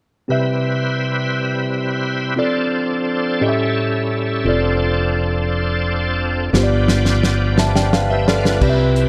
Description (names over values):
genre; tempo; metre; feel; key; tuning
slow gospel; 58 BPM (dotted quarters); 6/8; straight; C major; A4 = 437 Hz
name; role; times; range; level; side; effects
mellow tine electric piano; accompaniment; 0.3-9.1 s; G2 to A5; -21 LUFS; equal; none
bright tonewheel organ; sustained chords; 0.3-9.1 s; F3 to E5; -24 LUFS; equal; slow rotary speaker, overdrive, chorus vibrato
fingered electric bass; bass; 4.5-9.1 s; F1 to C2; -22 LUFS; equal; none
warm soul drum kit; drums; 6.5-9.1 s; crash cymbal, hi-hat, kick drum, snare drum; -22 LUFS; equal; gated reverb
room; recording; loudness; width
moderate plate reverb, RT60 2.3 s; bright 1980s-style digital production; -18 LUFS; mono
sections
0.3-8.6 A section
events
drum fill 6.5-8.6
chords
0.3 Cmaj7; 2.4 F6; 3.4 A7; 4.5 Dm7/F; 6.5 G7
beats
| 0.30 1.34 | 2.38 3.42 | 4.46 5.50 | 6.54 7.58 | 8.62